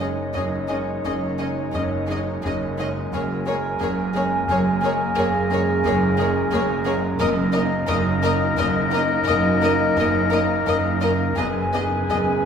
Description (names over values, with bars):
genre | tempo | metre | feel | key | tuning
cinematic | 86 BPM | 3/4 | rubato | F# major | A4 = 438 Hz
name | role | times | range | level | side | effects
warm symphonic violin section | melody | 0.0-12.2 s | C#5 to D#5 | -30 LUFS | left 4 dB | none
mellow clarinet | second line | 0.0-12.5 s | A#4 to C#5 | -28 LUFS | left 3 dB | none
mellow flute section | second line | 0.0-12.5 s | D#5 to G#5 | -29 LUFS | equal | none
warm symphonic violin section | second line | 0.0-12.2 s | G#4 to A#4 | -31 LUFS | left 3 dB | none
clear grand piano | accompaniment | 0.0-12.5 s | F#1 to C#5 | -26 LUFS | equal | none
dark symphonic viola section | accompaniment | 0.0-12.2 s | A#3 to C#4 | -31 LUFS | equal | none
warm French horn section | sustained chords | 0.0-12.5 s | A#3 to G#4 | -27 LUFS | equal | none
warm symphonic cello section | bass | 0.0-12.5 s | F#2 | -28 LUFS | right 3 dB | none
warm symphonic double bass section | bass | 0.0-12.5 s | F#1 | -28 LUFS | right 2 dB | none
timpani | percussion | 7.2-8.2, 11.4-12.4 s | F#2 | -32 LUFS | left 1 dB | none
room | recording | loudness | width
wet recital hall reverb, RT60 1.4 s | recorded in a church or concert hall | -19 LUFS | side -7 dB against mid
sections
0.0-12.5 A section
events
timpani fill 11.4-12.5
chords
0.0 C#sus2/F#; 3.1 F#add9; 7.2 D#m/F#; 11.4 G#m7/F#